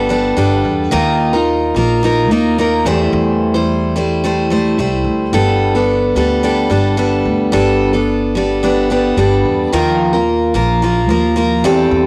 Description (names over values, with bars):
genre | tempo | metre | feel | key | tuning
acoustic pop | 109 BPM | 4/4 | straight | unclear | A4 = 438 Hz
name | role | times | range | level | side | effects
picked steel-string acoustic guitar | accompaniment | 0.0-12.1 s | E2 to C5 | -15 LUFS | equal | cassette tape
upright bass | bass | 0.0-12.1 s | G1 to E2 | -21 LUFS | equal | none
room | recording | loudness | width
light reverb, small room ambience | home recording on cassette | -14 LUFS | mono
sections
0.0-5.3 A section; 5.3-12.1 A section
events
none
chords
0.0 Gadd9; 0.9 Ebsus2; 2.9 C6/E; 5.3 Gadd9; 9.7 Ebsus2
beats
0.38 | 0.93 1.48 2.03 2.58 | 3.13 3.68 4.23 4.78 | 5.33 5.88 6.43 6.98 | 7.53 8.08 8.63 9.18 | 9.73 10.28 10.83 11.38 | 11.93